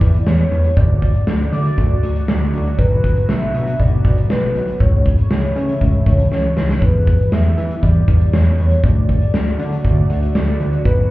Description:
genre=synth-pop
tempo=119 BPM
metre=4/4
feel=straight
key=unclear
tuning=A4 = 440 Hz
part: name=warm velvety synth lead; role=melody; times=0.0-11.1 s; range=B4 to E5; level=-24 LUFS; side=equal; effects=chorus, tape echo
part: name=phased analog pad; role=sustained chords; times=0.0-11.1 s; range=C#3 to G4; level=-25 LUFS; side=equal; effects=phaser, chorus
part: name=fat analog bass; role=bass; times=0.0-11.1 s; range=B1 to E3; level=-17 LUFS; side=equal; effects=none
part: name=huge arena drum kit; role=drums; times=0.0-11.0 s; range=hi-hat, kick drum, snare drum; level=-17 LUFS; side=equal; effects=none
room=little or no reverb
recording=heard muffled through a wall, club reverb, EQ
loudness=-13 LUFS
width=side -18 dB against mid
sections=0.0-11.1 A section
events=drum fill 6.3-6.8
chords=0.0 Em; 0.8 D; 2.8 Bm; 4.8 A/C#; 6.8 Em; 8.8 D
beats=0.27 | 0.77 1.27 1.78 2.28 | 2.79 3.29 3.79 4.30 | 4.80 5.31 5.81 6.32 | 6.82 7.33 7.83 8.33 | 8.84 9.34 9.85 10.35 | 10.85

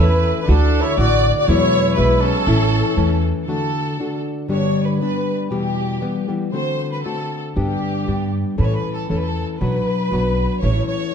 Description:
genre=mexican folk, mariachi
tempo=118 BPM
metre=2/4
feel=straight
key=A major, D major from 3.5 s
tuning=A4 = 441 Hz
part: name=rich studio violin section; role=melody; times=0.0-11.1 s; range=G4 to D5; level=-22 LUFS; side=equal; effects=none
part: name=mellow trumpet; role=second line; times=0.0-3.2 s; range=C#4 to F#4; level=-25 LUFS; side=right 5 dB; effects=none
part: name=nylon-string guitar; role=accompaniment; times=0.0-11.1 s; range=E2 to A4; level=-21 LUFS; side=left 3 dB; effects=none
part: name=upright bass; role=bass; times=0.0-3.3, 7.6-10.8 s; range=A1 to A2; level=-19 LUFS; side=right 1 dB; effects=none
room=moderate recital hall reverb, RT60 1.3 s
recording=dark, warm production, nothing above 10.6 kHz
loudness=-17 LUFS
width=side -7 dB against mid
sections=0.0-3.5 A section; 3.5-11.1 B section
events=none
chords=0.5 Dadd9; 1.5 Eadd9; 2.5 A; 3.5 D; 4.5 G; 5.5 Em; 6.5 D7; 7.6 G; 8.6 A; 9.6 Bm; 10.6 A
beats=| 0.48 0.98 | 1.47 1.97 | 2.47 2.97 | 3.48 3.99 | 4.50 5.00 | 5.51 6.02 | 6.53 7.04 | 7.56 8.07 | 8.58 9.09 | 9.60 10.11 | 10.62 11.14

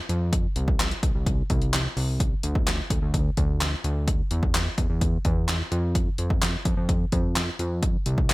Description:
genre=dance-pop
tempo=128 BPM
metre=4/4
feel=straight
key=unclear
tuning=A4 = 440 Hz
part: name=fat analog bass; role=bass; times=0.1-8.3 s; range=C2 to F2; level=-26 LUFS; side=equal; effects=sidechain pumping
part: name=deep house drum kit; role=drums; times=0.1-8.3 s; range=handclaps, hi-hat, kick drum, snare drum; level=-24 LUFS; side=equal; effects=none
room=little or no reverb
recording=none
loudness=-22 LUFS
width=side -20 dB against mid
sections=0.0-8.3 A section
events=none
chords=none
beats=| 0.33 0.80 1.26 1.73 | 2.20 2.67 3.14 3.61 | 4.08 4.55 5.01 5.48 | 5.95 6.42 6.89 7.36 | 7.83 8.30

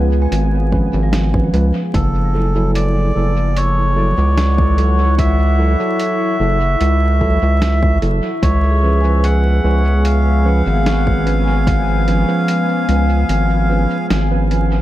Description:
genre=ambient dub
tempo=74 BPM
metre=4/4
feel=straight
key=F# minor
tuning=A4 = 440 Hz
part: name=deep dark ambient pad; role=sustained chords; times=0.0-14.8 s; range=E#3 to G#5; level=-24 LUFS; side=left 1 dB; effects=chorus, built-in reverb
part: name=vibraphone with medium mallets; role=arpeggios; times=0.0-14.8 s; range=E#3 to G#5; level=-24 LUFS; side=left 2 dB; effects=analog delay
part: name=mellow tine electric piano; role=stabs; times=0.0-14.8 s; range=E#3 to B4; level=-23 LUFS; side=right 2 dB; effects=dub echo
part: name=round analog bass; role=bass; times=0.0-14.8 s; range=F#1 to C#2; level=-14 LUFS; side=equal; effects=none
part: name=lo-fi sampler-style drum kit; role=drums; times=0.3-14.7 s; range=hi-hat, snare drum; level=-26 LUFS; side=equal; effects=dub echo
part: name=electronic kick drum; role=drums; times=0.7-11.8 s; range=none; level=-19 LUFS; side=equal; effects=overdrive
part: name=melodica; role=melody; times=1.9-14.1 s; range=A4 to F#5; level=-21 LUFS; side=equal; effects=analog delay
room=digital ambience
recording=echo-heavy mix, vinyl crackle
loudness=-13 LUFS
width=side -14 dB against mid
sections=0.0-14.8 A section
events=kick drops out 13.3-14.8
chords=0.0 C#7; 1.9 F#m7; 8.4 C#7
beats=0.32 1.13 | 1.94 2.75 3.56 4.37 | 5.18 6.00 6.81 7.62 | 8.43 9.24 10.05 10.86 | 11.67 12.48 13.29 14.10

